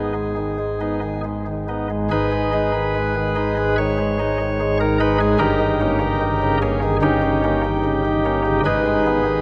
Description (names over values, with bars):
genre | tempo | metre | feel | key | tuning
classical, chorale-style piece for pipe organ | 68-75 BPM | 4/4 | rubato | G# minor | A4 = 440 Hz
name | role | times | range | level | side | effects
chamber organ, cornet | solo | 0.0-9.4 s | G1 to C#5 | -20 LUFS | equal | none
room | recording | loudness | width
wet cathedral reverb, RT60 4.4 s | none | -20 LUFS | mono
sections
0.0-2.1 A section; 2.1-9.4 A section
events
none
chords
0.0 G#m; 5.4 D#7/G; 8.6 G#m